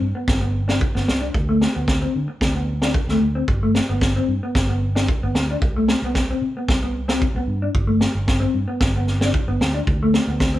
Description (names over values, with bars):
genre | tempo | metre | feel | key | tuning
highlife guitar band | 113 BPM | 4/4 | straight | G major | A4 = 440 Hz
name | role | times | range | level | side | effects
mellow electric guitar | accompaniment | 0.0-10.6 s | A3 to D4 | -23 LUFS | left 1 dB | tremolo
fingered electric bass | bass | 0.0-10.6 s | G1 to D3 | -23 LUFS | equal | none
vintage drum kit | drums | 0.3-10.5 s | kick drum, snare drum | -21 LUFS | equal | none
room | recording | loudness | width
moderate stone room reverb, RT60 1.1 s | band playing live in one room | -18 LUFS | side -14 dB against mid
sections
0.0-10.6 A section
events
none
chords
0.0 G; 1.4 D5; 3.5 G; 5.6 C5; 7.7 G; 9.9 D5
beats
0.28 0.82 | 1.35 1.88 2.42 2.95 | 3.48 4.02 4.55 5.08 | 5.62 6.15 6.68 7.21 | 7.75 8.28 8.81 9.34 | 9.88 10.41